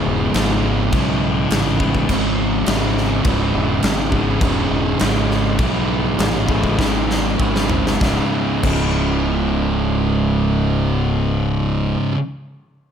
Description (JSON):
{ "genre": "stoner and doom metal", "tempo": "102 BPM", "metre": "4/4", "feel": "uneven beats", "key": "C# minor", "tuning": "A4 = 440 Hz", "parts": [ { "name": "crunchy overdriven guitar", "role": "riff", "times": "0.0-12.2 s", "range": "C#2 to E4", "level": "-24 LUFS", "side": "equal", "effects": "none" }, { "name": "thick fuzz guitar", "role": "riff", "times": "0.0-12.2 s", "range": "C#2 to C#3", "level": "-22 LUFS", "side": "left 7 dB", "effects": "distortion" }, { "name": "thick fuzz guitar", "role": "riff", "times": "0.0-12.2 s", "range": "C#2 to C#3", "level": "-22 LUFS", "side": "right 8 dB", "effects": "distortion" }, { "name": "fuzz fingered electric bass", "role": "bass", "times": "0.0-11.9 s", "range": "C#1 to B1", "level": "-22 LUFS", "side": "equal", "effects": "overdrive" }, { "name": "big rock drum kit", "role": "drums", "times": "0.3-8.8 s", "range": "crash cymbal, kick drum, snare drum, toms", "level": "-22 LUFS", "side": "equal", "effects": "none" } ], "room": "light reverb, small room ambience", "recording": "none", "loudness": "-16 LUFS", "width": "side -8 dB against mid", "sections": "0.0-8.0 A section; 8.0-10.5 B section", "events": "slowing down 3.2-8.0; drum fill 6.8-8.0", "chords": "0.0 C#m", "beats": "0.34 | 0.93 1.50 2.08 2.67 | 3.25 3.83 4.41 5.00 | 5.59 6.18 6.79 7.40 | 8.01 8.63 9.26 9.88" }